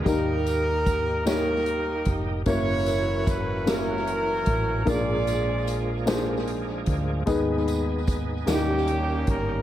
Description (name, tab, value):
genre	slow gospel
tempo	50 BPM (dotted quarters)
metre	6/8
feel	straight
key	unclear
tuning	A4 = 439 Hz
part	clear horn section	melody	0.0-9.6 s	A#3 to D5	-27 LUFS	right 1 dB	tape echo
part	dark upright piano	accompaniment	0.0-9.6 s	A#2 to C#5	-28 LUFS	left 2 dB	tape echo
part	bright tonewheel organ	sustained chords	0.0-9.6 s	D#3 to G#4	-33 LUFS	right 3 dB	slow rotary speaker, overdrive, chorus vibrato
part	hollow-body short-scale fingered electric bass	bass	0.0-9.6 s	E#1 to D#2	-29 LUFS	right 1 dB	none
part	swinging big-band drum kit	drums	0.1-9.5 s	hi-hat, kick drum, snare drum	-30 LUFS	equal	tape echo
part	tambourine	percussion	0.1-8.8 s	none	-45 LUFS	right 3 dB	tape echo
room	light reverb, small room ambience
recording	echo-heavy mix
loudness	-22 LUFS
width	side -12 dB against mid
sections	0.0-9.6 A section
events	none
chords	0.1 D#; 2.5 F#7; 4.9 A#7; 7.3 G#m/D#; 8.5 D#7